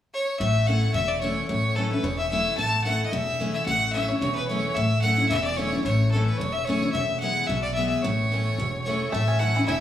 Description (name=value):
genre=bluegrass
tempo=220 BPM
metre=4/4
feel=swing 55% on 8ths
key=A major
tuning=A4 = 440 Hz
part: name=clear fiddle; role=melody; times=0.1-9.8 s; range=A4 to A5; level=-25 LUFS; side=left 1 dB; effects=none
part: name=picked steel-string acoustic guitar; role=accompaniment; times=0.4-9.8 s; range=E2 to E4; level=-28 LUFS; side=left 1 dB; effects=none
part: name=upright bass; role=bass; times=0.4-9.8 s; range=E1 to B1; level=-27 LUFS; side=equal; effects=none
part: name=bluegrass banjo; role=melody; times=9.1-9.8 s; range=E3 to E4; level=-28 LUFS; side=right 2 dB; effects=none
room=wet large studio reverb, RT60 1.2 s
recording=band playing live in one room, small room ambience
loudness=-22 LUFS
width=side -11 dB against mid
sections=0.4-9.8 A section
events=none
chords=0.4 A; 6.9 E; 8.0 A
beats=0.13 | 0.40 0.67 0.94 1.22 | 1.49 1.76 2.03 2.31 | 2.58 2.85 3.12 3.40 | 3.67 3.94 4.21 4.49 | 4.76 5.03 5.31 5.58 | 5.85 6.13 6.40 6.67 | 6.95 7.22 7.49 7.77 | 8.04 8.31 8.59 8.86 | 9.13 9.41 9.68